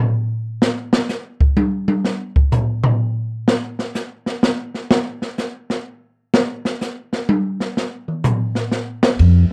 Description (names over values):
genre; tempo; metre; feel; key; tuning
jazz piano trio; 126 BPM; 3/4; swing 66% on 8ths; unclear; A4 = 439 Hz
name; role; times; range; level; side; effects
open jazz drum kit; drums; 0.6-9.3 s; hi-hat, kick drum, ride cymbal, snare drum, toms; -20 LUFS; equal; none
upright bass; bass; 9.2-9.5 s; F2; -12 LUFS; equal; none
room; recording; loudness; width
moderate club reverb, RT60 0.5 s; dark, warm production; -20 LUFS; mono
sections
0.0-9.2 A section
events
drum solo 0.0-9.2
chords
none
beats
0.14 | 0.62 1.10 1.58 | 2.05 2.53 3.01 | 3.48 3.96 4.44 | 4.91 5.39 5.87 | 6.34 6.82 7.29 | 7.77 8.25 8.72 | 9.20